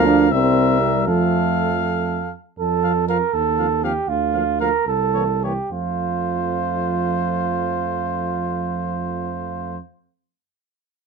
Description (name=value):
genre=classical, brass quintet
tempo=68-82 BPM (dotted quarters)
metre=6/8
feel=rubato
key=F major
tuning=A4 = 442 Hz
part: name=bright trumpet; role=melody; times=0.0-9.8 s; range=C5 to F5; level=-26 LUFS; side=left 8 dB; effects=none
part: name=warm flugelhorn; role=second line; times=0.0-9.8 s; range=F4 to Bb4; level=-22 LUFS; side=right 7 dB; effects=none
part: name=mellow French horn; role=accompaniment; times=0.0-9.8 s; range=F3 to D4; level=-25 LUFS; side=left 2 dB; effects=none
part: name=mellow trombone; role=accompaniment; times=0.0-9.8 s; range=E3 to A3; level=-28 LUFS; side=right 3 dB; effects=none
part: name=mellow tuba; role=bass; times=0.0-9.8 s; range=C2 to F2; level=-24 LUFS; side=right 4 dB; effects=none
room=light reverb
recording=minimal, uncompressed stereo recording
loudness=-18 LUFS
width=side -5 dB against mid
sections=0.0-2.6 A section; 2.6-5.7 B section; 5.7-9.0 C section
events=slowing down 1.8-5.7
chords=0.3 C7; 1.1 F; 3.3 F7/Eb; 4.1 Bb/D; 4.9 C7b9; 5.7 F